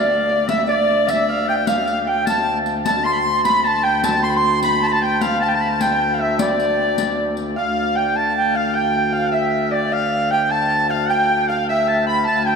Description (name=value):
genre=medieval dance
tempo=102 BPM (dotted quarters)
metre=6/8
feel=straight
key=D dorian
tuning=A4 = 439 Hz
part: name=breathy reedy tenor recorder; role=melody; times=0.0-12.6 s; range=D5 to C6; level=-19 LUFS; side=right 2 dB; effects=none
part: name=Celtic harp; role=second line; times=0.0-12.6 s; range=D5 to C6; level=-25 LUFS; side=right 1 dB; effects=none
part: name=edgy shawm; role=second line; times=0.0-12.6 s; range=D5 to C6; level=-22 LUFS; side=left 4 dB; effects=none
part: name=hand-pumped harmonium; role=drone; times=0.0-12.6 s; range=D2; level=-24 LUFS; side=left 2 dB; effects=none
part: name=riq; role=percussion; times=0.5-7.5 s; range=none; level=-28 LUFS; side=left 4 dB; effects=none
room=wet cathedral reverb, RT60 5.4 s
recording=in a vast, echoing space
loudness=-16 LUFS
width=side -5 dB against mid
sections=0.0-7.6 A section; 7.6-12.6 B section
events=none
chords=none